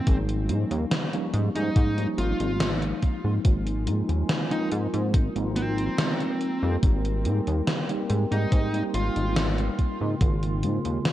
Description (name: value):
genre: vaporwave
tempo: 71 BPM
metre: 4/4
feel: straight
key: unclear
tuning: A4 = 443 Hz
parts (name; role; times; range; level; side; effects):
- dark smooth lead guitar; melody; 0.0-9.5 s; C4 to F4; -33 LUFS; equal; overdrive, tape echo
- mellow tine electric piano; accompaniment; 0.0-11.1 s; Db3 to G4; -30 LUFS; right 1 dB; medium stereo tremolo, wide subtle chorus, tape echo
- warbly tape-like pad; sustained chords; 0.0-11.1 s; Eb4 to Db6; -37 LUFS; left 1 dB; chorus, built-in reverb
- chorused synth bass; bass; 0.1-11.0 s; Ab1 to Ab2; -26 LUFS; equal; tube saturation
- electronic kick drum; drums; 0.1-10.4 s; none; -21 LUFS; equal; none
- gated 80s digital drum machine; drums; 0.1-11.1 s; hi-hat, snare drum; -28 LUFS; equal; gated reverb, gated reverb snare
room: little or no reverb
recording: cassette tape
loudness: -23 LUFS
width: side -13 dB against mid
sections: 0.0-11.1 A section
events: none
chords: 0.0 Bbm9/Ab; 3.0 Ab69; 6.8 Bbm9/Ab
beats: | 0.07 0.91 1.76 2.60 | 3.45 4.29 5.14 5.98 | 6.83 7.67 8.52 9.36 | 10.21 11.05